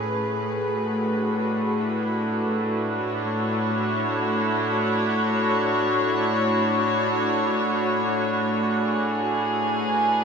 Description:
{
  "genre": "ambient",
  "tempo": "free time",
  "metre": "none",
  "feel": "none",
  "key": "unclear",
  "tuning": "A4 = 440 Hz",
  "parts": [
    { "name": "rich chamber string section", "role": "solo", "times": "0.0-10.2 s", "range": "A2 to C#5", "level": "-21 LUFS", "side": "equal", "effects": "diffuse ambient delay" }
  ],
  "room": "wet huge ambient reverb, RT60 9.6 s",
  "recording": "in a vast, echoing space",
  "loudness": "-21 LUFS",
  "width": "side -6 dB against mid",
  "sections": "0.0-10.2 A section",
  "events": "none",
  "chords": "0.1 Dmaj9/A",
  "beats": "free time"
}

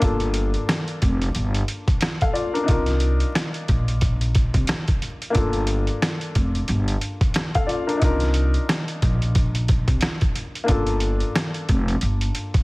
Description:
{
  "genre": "hip hop, boom-bap hip-hop",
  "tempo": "90 BPM",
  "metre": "4/4",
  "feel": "swing 59% on 16ths",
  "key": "G minor",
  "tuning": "A4 = 440 Hz",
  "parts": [
    { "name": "warm baby grand piano", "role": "accompaniment", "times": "0.0-12.6 s", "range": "Bb3 to F5", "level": "-26 LUFS", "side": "left 2 dB", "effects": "high-pass filter, low-pass filter" },
    { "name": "upright bass", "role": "bass", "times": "0.0-12.3 s", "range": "F1 to C2", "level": "-22 LUFS", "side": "equal", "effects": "none" },
    { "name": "trip hop sampler-style drum kit", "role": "drums", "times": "0.0-12.6 s", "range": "hi-hat, kick drum, rim click, snare drum", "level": "-22 LUFS", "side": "equal", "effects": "none" }
  ],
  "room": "little or no reverb",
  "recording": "heavily compressed radio sound, multiband compression, vinyl crackle",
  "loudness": "-19 LUFS",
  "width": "side -23 dB against mid",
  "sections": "0.0-12.6 A section",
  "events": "none",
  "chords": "0.0 Gm7; 2.7 Cm11; 5.4 Gm7; 8.0 Cm11; 10.7 Gm7",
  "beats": "| 0.02 0.69 1.35 2.02 | 2.69 3.35 4.02 4.69 | 5.35 6.02 6.69 7.35 | 8.02 8.69 9.35 10.02 | 10.69 11.35 12.02"
}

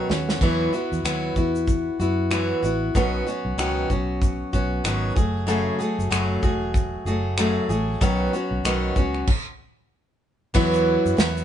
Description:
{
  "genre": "acoustic pop",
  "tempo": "95 BPM",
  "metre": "4/4",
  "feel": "swing 60% on 16ths",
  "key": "E major",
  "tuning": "A4 = 440 Hz",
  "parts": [
    { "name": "picked steel-string acoustic guitar", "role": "accompaniment", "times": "0.0-11.4 s", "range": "F#2 to G#4", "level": "-23 LUFS", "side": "left 1 dB", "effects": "none" },
    { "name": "vintage muted fingered electric bass", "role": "bass", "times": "0.1-11.4 s", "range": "E1 to F#2", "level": "-27 LUFS", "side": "right 1 dB", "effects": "none" },
    { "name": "loose indie drum kit", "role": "drums", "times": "0.1-11.4 s", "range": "crash cymbal, finger snaps, kick drum, shaker, snare drum", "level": "-24 LUFS", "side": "equal", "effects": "none" }
  ],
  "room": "little or no reverb",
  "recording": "band playing live in one room, nothing above 10.5 kHz",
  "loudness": "-20 LUFS",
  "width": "side -10 dB against mid",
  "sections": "0.4-10.5 A section",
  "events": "drum fill 0.0-0.4; stop 9.3-10.5",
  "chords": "0.4 Esus2; 2.9 Badd9; 5.2 F#madd9; 8.0 Badd9; 10.5 Esus2",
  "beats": "| 0.41 1.04 1.68 2.31 | 2.95 3.58 4.21 4.85 | 5.48 6.11 6.75 7.38 | 8.01 8.65 9.28 9.91 | 10.54 11.18"
}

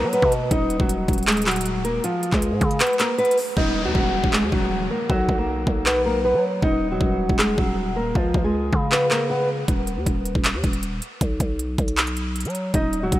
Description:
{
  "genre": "hip hop, trap",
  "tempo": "157 BPM",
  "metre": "4/4",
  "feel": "half-time",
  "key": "Eb minor",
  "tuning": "A4 = 443 Hz",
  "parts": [
    { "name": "nylon-string guitar", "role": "melody", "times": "0.0-9.5, 12.7-13.2 s", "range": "F3 to Eb5", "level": "-22 LUFS", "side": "equal", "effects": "low-pass filter" },
    { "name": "growling 808-style bass", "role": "bass", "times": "0.0-13.2 s", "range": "Eb1 to F#3", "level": "-26 LUFS", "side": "equal", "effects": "none" },
    { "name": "trap drum kit", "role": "drums", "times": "0.1-13.2 s", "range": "handclaps, hi-hat, kick drum", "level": "-23 LUFS", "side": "equal", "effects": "overdrive" },
    { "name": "downlifter", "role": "sound effects", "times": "3.6-6.6 s", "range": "none", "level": "-30 LUFS", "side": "left 1 dB", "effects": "none" }
  ],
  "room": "moderate huge ambient reverb, RT60 4.5 s",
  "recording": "dreamy mix soaked in reverb",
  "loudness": "-19 LUFS",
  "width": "side -15 dB against mid",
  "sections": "0.0-3.6 A section; 3.6-13.2 B section",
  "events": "kick muted 2.8-3.6; hi-hats muted 3.6-9.7; break 9.7-12.7",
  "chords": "0.0 B5; 0.5 Ebm; 2.0 Db7; 3.6 Ebm; 5.1 B5; 6.6 Ebm; 8.2 Db7; 9.7 N.C.; 11.2 B5",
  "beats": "0.13 | 0.51 0.89 1.27 1.66 | 2.04 2.42 2.80 3.19 | 3.57 3.95 4.33 4.71 | 5.10 5.48 5.86 6.24 | 6.62 7.01 7.39 7.77 | 8.15 8.54 8.92 9.30 | 9.68 10.06 10.45 10.83 | 11.21 11.59 11.97 12.36 | 12.74 13.12"
}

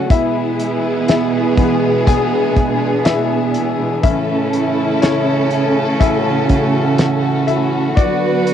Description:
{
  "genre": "pop ballad",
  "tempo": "61 BPM",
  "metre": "4/4",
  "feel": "straight",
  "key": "A major",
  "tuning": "A4 = 440 Hz",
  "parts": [
    { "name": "warm studio cello section", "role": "second line", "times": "0.0-8.5 s", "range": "B2 to F#4", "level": "-19 LUFS", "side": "right 8 dB", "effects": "none" },
    { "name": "clear concert grand piano", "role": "accompaniment", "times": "0.0-8.5 s", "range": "A2 to G#5", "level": "-20 LUFS", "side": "left 9 dB", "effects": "none" },
    { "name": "warm studio string section", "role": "sustained chords", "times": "0.0-8.5 s", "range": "B2 to B4", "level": "-18 LUFS", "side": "left 1 dB", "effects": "none" },
    { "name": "damped 70s drum kit", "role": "drums", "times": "0.1-8.5 s", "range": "hi-hat, kick drum, snare drum", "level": "-15 LUFS", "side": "equal", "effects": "cassette tape" }
  ],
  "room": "light reverb",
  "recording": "home recording on cassette",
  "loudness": "-13 LUFS",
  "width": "side -9 dB against mid",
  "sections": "0.0-8.5 A section",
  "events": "grand piano solo 0.0-8.5",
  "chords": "0.1 E; 4.0 A; 8.0 Bm",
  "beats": "| 0.10 1.09 2.07 3.05 | 4.04 5.02 6.00 6.99 | 7.97"
}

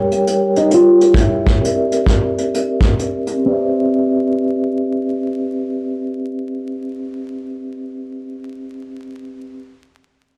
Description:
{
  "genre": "lo-fi hip hop",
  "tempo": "66 BPM",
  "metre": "4/4",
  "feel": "swing 65% on 16ths",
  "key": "C major",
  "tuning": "A4 = 441 Hz",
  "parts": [
    { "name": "hollow-body jazz guitar", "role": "melody", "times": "0.0-8.2 s", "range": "C4 to G4", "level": "-18 LUFS", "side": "equal", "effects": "low-pass filter, plate reverb" },
    { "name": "vibraphone with soft mallets", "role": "accompaniment", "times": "0.0-9.6 s", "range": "G3 to G5", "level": "-21 LUFS", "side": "equal", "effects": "low-pass filter" },
    { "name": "vintage brush drum kit", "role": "drums", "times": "0.1-3.4 s", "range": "hi-hat, kick drum", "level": "-20 LUFS", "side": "equal", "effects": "none" }
  ],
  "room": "moderate small room reverb, RT60 0.5 s",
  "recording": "transformer saturation, vinyl crackle",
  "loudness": "-16 LUFS",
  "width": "mono",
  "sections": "0.0-3.4 A section; 3.4-7.1 B section",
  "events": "filter sweep 0.0-3.4",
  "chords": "0.0 Gdim; 1.6 C7; 3.4 Cmaj7",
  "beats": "0.71 1.62 2.53 | 3.44 4.34 5.25 6.16"
}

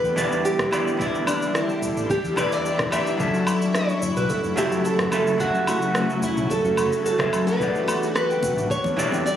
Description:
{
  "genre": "sunset chillout",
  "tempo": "109 BPM",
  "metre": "4/4",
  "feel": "straight",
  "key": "E dorian",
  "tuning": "A4 = 439 Hz",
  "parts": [
    { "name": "nylon-string guitar", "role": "melody", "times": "0.0-9.4 s", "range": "D4 to E5", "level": "-24 LUFS", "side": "right 1 dB", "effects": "vintage 12-bit sampler grit, ping-pong delay" },
    { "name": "vintage hollow-body jazz guitar", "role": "accompaniment", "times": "0.0-9.4 s", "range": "E3 to E5", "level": "-25 LUFS", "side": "left 1 dB", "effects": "auto-pan" },
    { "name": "shimmering ambient pad", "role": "sustained chords", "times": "0.0-9.4 s", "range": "C#3 to F#4", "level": "-28 LUFS", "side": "equal", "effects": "chorus, built-in reverb, phaser" },
    { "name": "concert harp", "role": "arpeggios", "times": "0.0-9.4 s", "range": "C#4 to G5", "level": "-33 LUFS", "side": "equal", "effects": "tape echo" },
    { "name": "mellow fretless electric bass", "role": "bass", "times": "0.0-9.1 s", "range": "E1 to F#2", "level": "-31 LUFS", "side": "equal", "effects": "none" },
    { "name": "electronic cabasa, rim click and woodblock", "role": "drums", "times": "0.0-9.4 s", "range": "none", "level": "-29 LUFS", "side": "equal", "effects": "overdrive" },
    { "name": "electronic kick drum", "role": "drums", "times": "1.0-8.8 s", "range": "none", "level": "-32 LUFS", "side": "equal", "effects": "overdrive" },
    { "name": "congas", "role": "percussion", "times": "7.9-9.2 s", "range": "none", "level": "-32 LUFS", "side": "left 4 dB", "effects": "none" }
  ],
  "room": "moderate plate reverb, RT60 1.8 s",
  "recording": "recorded on a phone in the room, studio reverb, compression",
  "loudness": "-20 LUFS",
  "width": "side -10 dB against mid",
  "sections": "0.0-9.4 A section",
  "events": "none",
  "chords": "0.0 Em7; 3.2 F#m7; 7.6 Em7",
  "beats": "0.45 | 1.00 1.55 2.10 2.65 | 3.20 3.75 4.30 4.85 | 5.40 5.95 6.50 7.05 | 7.60 8.15 8.70 9.25"
}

